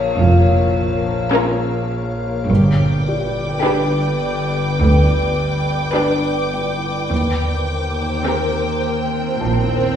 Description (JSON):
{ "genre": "cinematic", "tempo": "52 BPM", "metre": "4/4", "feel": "straight", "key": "unclear", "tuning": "A4 = 440 Hz", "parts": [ { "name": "glassy FM pad", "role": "sustained chords", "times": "0.0-10.0 s", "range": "Bb4 to G5", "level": "-22 LUFS", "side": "left 1 dB", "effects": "ensemble chorus, built-in reverb" }, { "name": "bowed-like drone", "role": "drone", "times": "0.0-10.0 s", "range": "G1 to Eb2", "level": "-23 LUFS", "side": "equal", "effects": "built-in reverb" }, { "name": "felt-muted upright piano", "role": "texture", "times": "0.0-10.0 s", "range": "F4 to A5", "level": "-27 LUFS", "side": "left 1 dB", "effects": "none" }, { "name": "rich studio violin section", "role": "texture", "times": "0.0-10.0 s", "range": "G5 to Eb6", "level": "-27 LUFS", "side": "equal", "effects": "none" }, { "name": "clear studio double bass section", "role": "bass", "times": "0.2-10.0 s", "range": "F1 to Eb2", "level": "-19 LUFS", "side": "right 1 dB", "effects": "none" }, { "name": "rich studio cello section", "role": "bass", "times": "0.2-10.0 s", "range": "D2 to Bb2", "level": "-20 LUFS", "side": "right 1 dB", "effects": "none" }, { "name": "clear studio violin section", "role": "melody", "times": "1.3-9.2 s", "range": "Bb4 to B4", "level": "-24 LUFS", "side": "left 3 dB", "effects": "none" }, { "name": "warm studio violin section", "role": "second line", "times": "1.3-9.1 s", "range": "F4 to G4", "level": "-26 LUFS", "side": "left 1 dB", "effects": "none" }, { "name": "clear studio viola section", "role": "accompaniment", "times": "1.3-9.1 s", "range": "C4 to D4", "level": "-23 LUFS", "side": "equal", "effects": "none" }, { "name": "swell", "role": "sound effects", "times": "9.1-10.0 s", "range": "none", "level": "-26 LUFS", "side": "right 3 dB", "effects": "none" } ], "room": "wet recital hall reverb, RT60 1.3 s", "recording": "recorded in a church or concert hall", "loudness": "-16 LUFS", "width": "side -9 dB against mid", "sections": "0.0-10.0 A section", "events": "swell 9.1-10.0", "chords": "0.0 Bbm; 2.5 G; 7.1 Eb6", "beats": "0.18 1.34 | 2.49 3.65 4.80 5.95 | 7.11 8.26 9.42" }